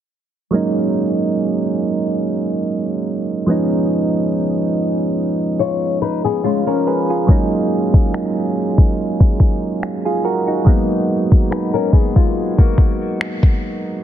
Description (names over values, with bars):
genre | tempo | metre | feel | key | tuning
contemporary R&B | 71 BPM | 4/4 | swing 54% on 16ths | unclear | A4 = 440 Hz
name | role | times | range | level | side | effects
soft electric-piano-like synth keys | accompaniment | 0.5-14.0 s | E#3 to B4 | -18 LUFS | right 2 dB | chorus
nylon-string guitar | arpeggios | 5.6-13.8 s | E#3 to C#5 | -20 LUFS | left 10 dB | ping-pong delay
smooth R&B drum kit | drums | 7.3-13.6 s | finger snaps, kick drum | -12 LUFS | equal | soft clipping on snare
room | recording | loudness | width
little or no reverb | dense, heavily limited modern master, low-pass filter | -15 LUFS | side -10 dB against mid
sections
0.5-14.0 A section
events
filter sweep 0.5-14.0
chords
0.5 F#69; 3.5 C#7; 7.3 F#69; 10.7 G#m7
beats
| 0.53 1.37 2.21 3.06 | 3.90 4.75 5.60 6.44 | 7.29 8.13 8.98 9.82 | 10.67 11.51 12.36 13.20